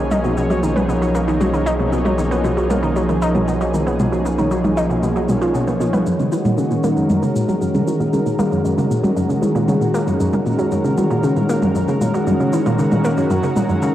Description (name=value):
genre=ambient, sequencer-driven space music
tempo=116 BPM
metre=4/4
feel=straight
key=unclear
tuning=A4 = 440 Hz
part: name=lush unison pad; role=sustained chords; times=0.0-13.9 s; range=D#3 to C#5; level=-19 LUFS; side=equal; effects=chorus, cassette tape, shimmer reverb
part: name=analog pluck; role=riff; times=0.0-13.9 s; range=F#2 to D#4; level=-20 LUFS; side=equal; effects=chorus, cassette tape, tape echo, shimmer reverb
part: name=warm sub bass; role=bass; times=0.0-6.0 s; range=B1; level=-25 LUFS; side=equal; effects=transformer saturation
part: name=bubbling stepped-filter texture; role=texture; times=0.0-6.1 s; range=C#4 to C#5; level=-28 LUFS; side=left 1 dB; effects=chorus, built-in reverb, cassette tape, shimmer reverb
part: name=electronic toms and shaker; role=percussion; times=0.1-13.9 s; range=none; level=-24 LUFS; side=equal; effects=cassette tape, tape echo
room=wet spring reverb, RT60 2.4 s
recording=home recording on cassette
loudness=-15 LUFS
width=side -12 dB against mid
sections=0.0-6.1 A section; 6.1-13.9 B section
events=none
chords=0.0 Bmaj7; 6.1 F#7